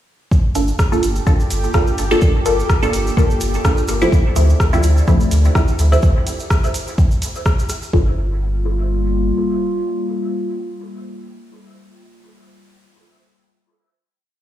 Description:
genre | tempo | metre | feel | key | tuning
dub techno | 126 BPM | 4/4 | swing 55% on 16ths | G dorian | A4 = 440 Hz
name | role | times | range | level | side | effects
warbly tape-like pad | sustained chords | 0.3-12.3 s | G3 to G5 | -25 LUFS | left 1 dB | chorus, built-in reverb, sidechain pumping
electronic kick drum | drums | 0.3-8.1 s | none | -15 LUFS | equal | small room ambience
tube shaker | percussion | 0.3-7.9 s | none | -31 LUFS | right 3 dB | none
bubbling stepped-filter texture | texture | 0.9-6.0 s | G4 | -32 LUFS | equal | chorus, built-in reverb, sidechain pumping
filtered dub chord stab | stabs | 0.6-12.3 s | F3 to A4 | -20 LUFS | equal | phaser, cassette tape, dub echo
soft dub sub bass | bass | 0.6-9.3 s | G1 to D2 | -17 LUFS | equal | sidechain pumping
deep house drum kit | drums | 0.6-7.8 s | hi-hat, rim click | -26 LUFS | equal | small room ambience, dub echo
room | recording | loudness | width
light reverb, digital ambience | played on a big sound system in a bare room, stone room reverb | -14 LUFS | side -12 dB against mid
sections
0.3-7.9 groove; 7.9-11.7 final chord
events
none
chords
0.3 Gm7; 4.1 Dm7; 7.9 Gm7

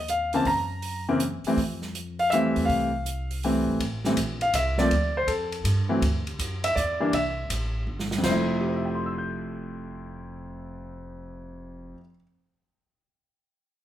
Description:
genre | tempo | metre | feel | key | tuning
jazz piano trio | 162 BPM | 3/4 | swing 66% on 8ths | F major | A4 = 441 Hz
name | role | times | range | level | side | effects
warm grand piano | melody | 0.0-12.2 s | F2 to G6 | -25 LUFS | equal | none
upright bass | bass | 0.0-11.9 s | F1 to G2 | -31 LUFS | equal | none
open jazz drum kit | drums | 0.1-8.4 s | crash cymbal, hi-hat, kick drum, ride cymbal, snare drum | -33 LUFS | right 2 dB | none
room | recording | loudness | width
moderate large studio reverb, RT60 0.9 s | band playing live in one room | -23 LUFS | side -12 dB against mid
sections
0.0-3.8 A section; 3.8-8.2 B section; 8.2-10.5 C section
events
drum fill 7.9-8.2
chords
0.5 Gb; 1.6 Fmaj7; 3.8 Am; 4.9 G9sus4; 6.0 Dadd9; 7.1 C; 8.2 Fmaj7

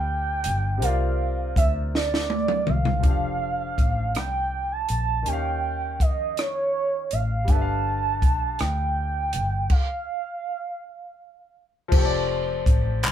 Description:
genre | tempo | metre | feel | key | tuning
slow six-eight R&B | 54 BPM (dotted quarters) | 6/8 | straight | F major | A4 = 439 Hz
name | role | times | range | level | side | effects
gliding portamento lead | melody | 0.0-11.6 s | Db5 to A5 | -27 LUFS | right 4 dB | chorus
clear concert grand piano | accompaniment | 0.0-13.1 s | C3 to F5 | -31 LUFS | left 4 dB | none
vintage muted fingered electric bass | bass | 0.0-13.1 s | F1 to F2 | -27 LUFS | left 1 dB | none
compact cocktail drum kit | drums | 0.4-13.1 s | crash cymbal, handclaps, hi-hat, kick drum, rim click, snare drum, toms | -22 LUFS | equal | none
room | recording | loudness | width
moderate studio reverb, RT60 0.7 s | band playing live in one room | -22 LUFS | side -10 dB against mid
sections
0.0-3.0 A section; 3.0-11.9 B section; 11.9-13.1 A section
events
drum fill 1.9-3.0; stop 9.7-11.9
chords
0.0 G7; 0.8 C9sus4; 3.0 F69; 5.3 Eb9; 7.5 G7; 9.7 N.C.; 11.9 F69

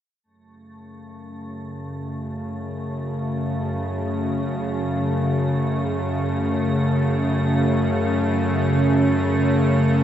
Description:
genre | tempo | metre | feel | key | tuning
dark ambient drone | free time | none | none | F# minor | A4 = 440 Hz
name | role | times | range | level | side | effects
bowed-like drone | drone | 1.4-10.0 s | F#2 to C#3 | -21 LUFS | equal | built-in reverb
icy glass pad | texture | 0.7-10.0 s | A3 | -27 LUFS | left 2 dB | chorus, built-in reverb
room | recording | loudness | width
wet cathedral reverb, RT60 4.9 s | none | -20 LUFS | side -10 dB against mid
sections
0.2-10.0 A section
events
none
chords
0.2 F#m

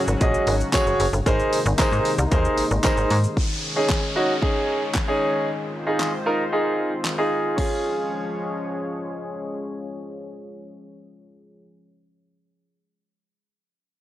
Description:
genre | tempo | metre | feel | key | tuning
dance-pop | 114 BPM | 4/4 | straight | Db major | A4 = 440 Hz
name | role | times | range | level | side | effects
chorused pulse-width pad | sustained chords | 0.0-11.6 s | Ab2 to Db5 | -30 LUFS | left 1 dB | sidechain pumping, low-pass filter
slap-like FM bass | bass | 0.1-3.3 s | Gb1 to Ab2 | -23 LUFS | equal | sidechain pumping
pop drum kit | drums | 0.1-7.7 s | crash cymbal, handclaps, hi-hat, kick drum, shaker, snare drum | -24 LUFS | equal | none
clear concert grand piano | accompaniment | 0.2-11.7 s | Db4 to Eb5 | -23 LUFS | right 1 dB | sidechain pumping, low-pass filter
tambourine | percussion | 0.7-3.0 s | none | -36 LUFS | left 5 dB | none
downlifter | sound effects | 3.4-7.6 s | none | -33 LUFS | equal | none
room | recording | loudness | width
light reverb | dry, gritty hardware recording, transformer saturation, cassette tape | -20 LUFS | side -13 dB against mid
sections
0.0-3.4 A section; 3.4-7.6 B section; 7.6-11.8 C section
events
none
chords
0.0 Gbsus2; 1.3 Abadd9; 3.4 Dbsus2; 5.5 Fm7; 7.6 Db

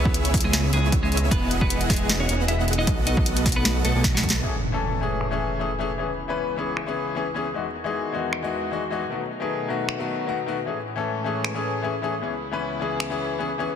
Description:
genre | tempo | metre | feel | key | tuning
future bass | 154 BPM | 4/4 | swing 54% on 16ths, half-time | E major | A4 = 441 Hz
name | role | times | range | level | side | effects
clean electric guitar | melody | 0.0-4.3 s | F#3 to E5 | -29 LUFS | equal | sidechain pumping, digital delay
warm chamber string section | sustained chords | 0.0-13.8 s | C#2 to D#5 | -34 LUFS | equal | sidechain pumping, low-pass filter
dense compressed supersaw | riff | 0.0-4.4 s | B3 to A5 | -29 LUFS | right 1 dB | sidechain pumping, low-pass filter, ping-pong delay
wide detuned saw bass | bass | 0.0-4.4 s | E1 to C#2 | -24 LUFS | equal | chorus, tube saturation, sidechain pumping
electronic kick drum | drums | 0.1-4.3 s | none | -24 LUFS | right 1 dB | overdrive
trap drum kit | drums | 0.1-13.1 s | finger snaps, hi-hat, snare drum | -26 LUFS | equal | low-pass filter on hats, low-pass filter on snare, low-pass filter on room
bright grand piano | accompaniment | 4.4-13.7 s | D#3 to B4 | -26 LUFS | left 4 dB | sidechain pumping, ping-pong delay
impact | sound effects | 4.4-6.0 s | none | -30 LUFS | right 1 dB | none
room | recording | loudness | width
light reverb, digital ambience | dense, heavily limited modern master | -22 LUFS | side -8 dB against mid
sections
0.0-4.4 A section; 4.4-13.8 B section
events
drop 0.0-4.4; drum fill 4.0-4.4; impact 4.4-6.0; filter sweep on string section 4.4-13.8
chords
0.0 C#m7; 1.3 Emaj9; 2.9 B7; 4.4 Amaj7; 6.0 C#m7; 7.5 Emaj9; 9.1 B7; 10.7 Amaj7; 12.2 C#m7

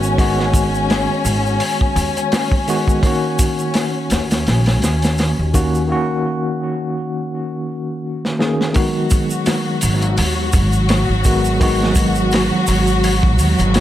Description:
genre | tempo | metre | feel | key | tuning
trip hop | 84 BPM | 4/4 | swing 56% on 16ths | unclear | A4 = 440 Hz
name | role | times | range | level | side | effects
bright tine electric piano | accompaniment | 0.0-13.8 s | Eb3 to Ab4 | -20 LUFS | equal | medium stereo tremolo, vintage 12-bit sampler grit, tape echo
warm symphonic string section | sustained chords | 0.0-13.8 s | Gb3 to Gb4 | -21 LUFS | left 1 dB | none
upright bass | bass | 0.0-13.8 s | Ab1 to Eb2 | -19 LUFS | equal | none
tube shaker | percussion | 0.0-13.8 s | none | -29 LUFS | right 3 dB | none
crunchy breakbeat drum kit | drums | 0.2-13.8 s | hi-hat, kick drum, snare drum | -19 LUFS | equal | none
room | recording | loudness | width
small room ambience | none | -15 LUFS | side -12 dB against mid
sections
0.0-8.8 A section; 8.8-13.8 B section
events
break 5.9-8.8; drum fill 8.2-8.8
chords
0.0 Abm7; 3.0 Ebm7; 8.8 Abm7

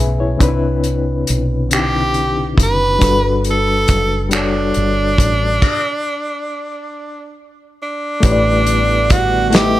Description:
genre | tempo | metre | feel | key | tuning
slow six-eight R&B | 46 BPM (dotted quarters) | 6/8 | straight | unclear | A4 = 440 Hz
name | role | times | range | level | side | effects
barky reed electric piano | accompaniment | 0.0-9.8 s | C3 to B5 | -19 LUFS | left 4 dB | overdrive, fast tremolo
woody fretless electric bass | bass | 0.0-9.8 s | F#1 to C2 | -19 LUFS | equal | ensemble chorus
warm soul drum kit | drums | 0.4-9.7 s | crash cymbal, finger snaps, hi-hat, kick drum, snare drum | -15 LUFS | equal | none
edgy tenor saxophone | melody | 1.7-9.8 s | D4 to B4 | -18 LUFS | right 2 dB | none
warm analog pad | sustained chords | 8.2-9.8 s | D3 to B3 | -24 LUFS | right 1 dB | chorus
room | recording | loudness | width
light reverb, small room ambience | none | -13 LUFS | side -15 dB against mid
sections
0.0-8.2 A section; 8.2-9.8 B section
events
stop 5.6-8.2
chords
0.4 Cmaj9; 3.0 Gmaj9; 5.6 N.C.; 8.2 A9sus4

